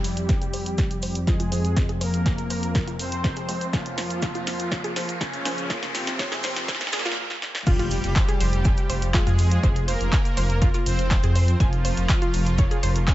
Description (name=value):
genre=melodic techno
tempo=122 BPM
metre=4/4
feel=straight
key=F minor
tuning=A4 = 440 Hz
part: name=soft supersaw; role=melody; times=0.0-13.1 s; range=Bb2 to C5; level=-30 LUFS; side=equal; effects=sidechain pumping, low-pass filter, dub echo
part: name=warm analog pad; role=sustained chords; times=0.0-13.1 s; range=F2 to Db6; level=-33 LUFS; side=equal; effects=chorus, sidechain pumping
part: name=filtered dub chord stab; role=stabs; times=0.0-7.1 s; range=F3 to F4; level=-39 LUFS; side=left 1 dB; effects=none
part: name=analog drone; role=drone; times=1.0-7.2 s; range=F2 to F3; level=-34 LUFS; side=left 1 dB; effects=chorus, sidechain pumping
part: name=punchy analog drum machine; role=drums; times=0.0-13.1 s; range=crash cymbal, handclaps, hi-hat, snare drum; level=-30 LUFS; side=equal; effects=sidechain pumping on hats, high-pass filter on hats, small room ambience, high-pass filter on snare, sidechain pumping on cymbals, high-pass filter on cymbals, dub echo
part: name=cabasa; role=percussion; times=0.0-13.1 s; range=none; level=-41 LUFS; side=right 4 dB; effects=none
part: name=riser and impact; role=sound effects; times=0.0-9.6 s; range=none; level=-34 LUFS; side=equal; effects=none
part: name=wide unison pluck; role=arpeggios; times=0.3-13.1 s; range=F4 to Ab5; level=-33 LUFS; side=equal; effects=sidechain pumping, analog delay
part: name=electronic kick drum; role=drums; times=0.3-13.1 s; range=none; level=-23 LUFS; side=equal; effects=small room ambience
part: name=dark detuned saw bass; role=bass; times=7.7-13.1 s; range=F1 to F2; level=-22 LUFS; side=equal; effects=sidechain pumping
room=digital ambience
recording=echo-heavy mix, high-pass filter, nothing above 7.9 kHz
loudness=-21 LUFS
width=side -15 dB against mid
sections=0.0-7.7 A section; 7.7-13.1 B section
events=build-up 0.0-7.7; drum fill 0.0-7.2, 7.3-7.7; riser 0.0-7.2; filter sweep on synth arpeggio sound 0.0-7.7; filter sweep on supersaw synth 0.0-7.7; filter sweep 0.0-7.7; stop 7.2-7.7; drop 7.7-13.1; impact 7.7-9.6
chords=0.0 Fm; 3.7 Bbm/F; 7.7 Fm; 11.6 Bbm/F